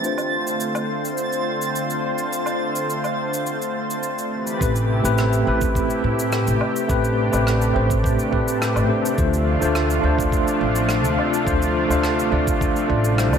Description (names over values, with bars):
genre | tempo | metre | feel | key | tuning
sunset chillout | 105 BPM | 4/4 | straight | A minor | A4 = 440 Hz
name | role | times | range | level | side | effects
tine electric piano | accompaniment | 0.0-13.4 s | G3 to D5 | -23 LUFS | moving between left 5 dB and right 4 dB | medium stereo tremolo, auto-pan, digital delay
lush unison pad | sustained chords | 0.0-13.4 s | C3 to C5 | -24 LUFS | equal | chorus
cabasa, woodblock and rim click | drums | 0.0-13.4 s | none | -30 LUFS | left 1 dB | none
twinkling granular texture | texture | 0.0-4.6 s | A6 | -31 LUFS | right 4 dB | built-in reverb
upright bass | bass | 4.6-13.4 s | A1 to A2 | -22 LUFS | equal | none
electronic kick drum | drums | 4.6-13.0 s | none | -24 LUFS | equal | none
room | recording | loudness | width
moderate lush hall reverb, RT60 2.1 s | none | -18 LUFS | side -7 dB against mid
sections
0.0-4.6 A section; 4.6-13.4 B section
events
none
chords
0.0 Dm7; 4.3 Am9; 9.2 Dm7